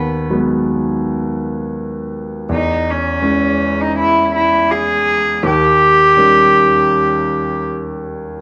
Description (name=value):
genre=acoustic folk-pop ballad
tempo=82 BPM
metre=4/4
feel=straight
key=unclear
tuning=A4 = 440 Hz
part: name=warm cello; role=melody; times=0.0-7.6 s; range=B3 to G#4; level=-15 LUFS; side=equal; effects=none
part: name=warm grand piano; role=accompaniment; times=0.0-8.4 s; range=D#2 to C#4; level=-21 LUFS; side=equal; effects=none
room=moderate studio reverb, RT60 0.8 s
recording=none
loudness=-14 LUFS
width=mono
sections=0.0-8.4 A section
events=none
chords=0.0 G#m7/D#; 2.5 E6; 5.4 D#7